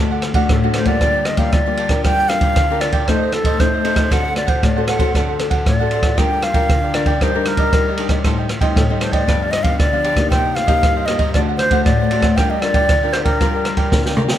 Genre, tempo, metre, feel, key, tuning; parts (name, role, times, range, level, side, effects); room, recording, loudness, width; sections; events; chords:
samba and choro; 116 BPM; 4/4; straight; G minor; A4 = 439 Hz
cavaquinho; accompaniment; 0.0-14.4 s; D4 to G5; -25 LUFS; right 7 dB
nylon-string guitar; accompaniment; 0.0-14.4 s; G2 to Bb4; -21 LUFS; left 5 dB
open jazz drum kit; drums; 0.2-14.4 s; kick drum, ride cymbal, rim click, snare drum, toms; -17 LUFS; right 1 dB
wooden flute; melody; 0.5-14.1 s; A4 to G5; -20 LUFS; equal; slapback echo
light reverb; close, detailed microphones; -14 LUFS; side -11 dB against mid
0.0-14.4 A section
drum fill 13.9-14.4
0.0 D; 1.0 Bb6/D; 3.1 Adim; 4.1 D7; 6.2 Gm7; 7.2 Ebmaj7/G; 8.2 Am7b5; 9.3 G7; 10.3 Cm7; 11.3 D7; 12.4 Gm7